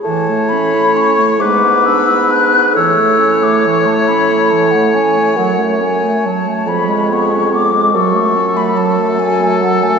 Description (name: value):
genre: classical, slow romantic movement for wind quintet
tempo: 46 BPM (dotted quarters)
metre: 6/8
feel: uneven beats, rubato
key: A major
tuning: A4 = 440 Hz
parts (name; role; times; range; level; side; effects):
- mellow hollow concert flute; melody; 0.0-10.0 s; F#5 to F#6; -15 LUFS; left 5 dB; none
- clear oboe; second line; 0.0-10.0 s; A4 to C#5; -19 LUFS; left 3 dB; none
- mellow French horn; accompaniment; 0.0-10.0 s; F#3 to B3; -21 LUFS; right 2 dB; none
- warm clarinet; accompaniment; 0.0-10.0 s; E3 to E4; -19 LUFS; right 5 dB; none
- mellow bassoon; bass; 0.0-10.0 s; E#2 to A2; -16 LUFS; right 2 dB; none
room: wet church reverb, RT60 3.4 s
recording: recorded in a church or concert hall, nothing above 7.8 kHz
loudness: -10 LUFS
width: side -6 dB against mid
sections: 0.0-10.0 A section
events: none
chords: 0.0 A; 1.4 E7/G#; 2.7 A; 5.4 F#m; 6.7 C#7/E#; 7.9 F#m